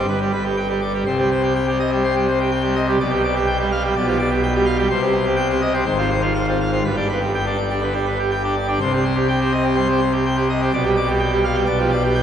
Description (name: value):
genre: classical, organ toccata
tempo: 124 BPM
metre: 4/4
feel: straight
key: unclear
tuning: A4 = 442 Hz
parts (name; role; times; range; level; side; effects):
- pipe organ, full organ; solo; 0.0-12.2 s; G1 to G5; -17 LUFS; equal; none
room: wet church reverb, RT60 3.5 s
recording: recorded in a church or concert hall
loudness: -17 LUFS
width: side -9 dB against mid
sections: 0.0-8.8 A section; 8.8-12.2 A section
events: none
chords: 0.1 G; 1.1 Cm; 3.0 G7/B; 4.9 Cm; 5.9 Fm/Ab; 6.8 G; 8.8 Cm; 10.7 G7/B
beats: 0.08 0.56 | 1.05 1.54 2.02 2.51 | 2.99 3.47 3.94 4.42 | 4.90 5.38 5.86 6.35 | 6.84 7.33 7.83 8.32 | 8.81 9.30 9.78 10.26 | 10.74 11.22 11.70 12.17